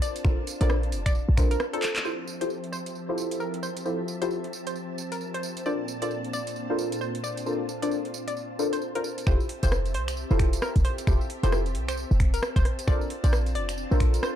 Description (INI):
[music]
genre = UK garage, two-step garage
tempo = 133 BPM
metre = 4/4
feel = swing 60% on 16ths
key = F major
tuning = A4 = 441 Hz
[part]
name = hollow square pluck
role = melody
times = 0.0-14.4 s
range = A4 to D5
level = -35 LUFS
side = equal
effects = chorus, tape echo
[part]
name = soft string machine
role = sustained chords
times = 0.0-14.4 s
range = Bb2 to A5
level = -37 LUFS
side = equal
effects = ensemble chorus, sidechain pumping
[part]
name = deep mellow chord stab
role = stabs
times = 0.0-14.4 s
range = D4 to C5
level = -31 LUFS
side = left 1 dB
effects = chorus, tape echo
[part]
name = garage drum kit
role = drums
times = 0.0-14.3 s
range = finger snaps, handclaps, hi-hat, rim click, tambourine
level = -34 LUFS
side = right 1 dB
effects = overdrive
[part]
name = short 808-style bass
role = bass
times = 0.2-1.6, 9.3-14.2 s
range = F1 to C2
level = -25 LUFS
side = equal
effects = none
[part]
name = electronic kick drum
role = drums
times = 0.2-1.5, 9.3-14.1 s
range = none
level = -25 LUFS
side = equal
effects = none
[sound]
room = light reverb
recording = dark, warm production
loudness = -24 LUFS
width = side -10 dB against mid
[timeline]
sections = 0.0-2.0 A section; 2.0-9.3 B section; 9.3-14.4 C section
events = break 1.6-2.0; drum fill 1.8; band accent 1.9; drop 9.3-14.4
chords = 0.0 Bbmaj9; 2.0 Fmaj9; 5.7 Bbmaj9; 9.3 Fmaj9; 12.9 Bbmaj9